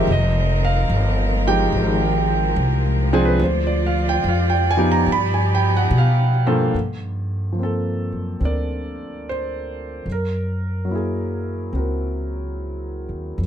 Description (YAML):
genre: jazz ballad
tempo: 72 BPM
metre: 4/4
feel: swing 66% on 8ths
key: unclear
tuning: A4 = 441 Hz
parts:
  - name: warm concert grand piano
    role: accompaniment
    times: 0.0-13.4 s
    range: G2 to B5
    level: -22 LUFS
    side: right 2 dB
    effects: none
  - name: rich studio cello section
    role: sustained chords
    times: 0.0-6.7 s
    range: B2 to D5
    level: -24 LUFS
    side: left 1 dB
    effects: none
  - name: upright bass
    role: bass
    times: 0.0-13.5 s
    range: F1 to B2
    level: -21 LUFS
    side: equal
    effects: none
room: light reverb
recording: close, detailed microphones, faint mains hum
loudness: -18 LUFS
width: side -9 dB against mid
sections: 0.0-6.7 A section; 6.7-13.5 B section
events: none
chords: 0.1 Fm9; 3.4 Dm7b5; 5.1 G7b13; 6.7 Gm11; 10.1 F#9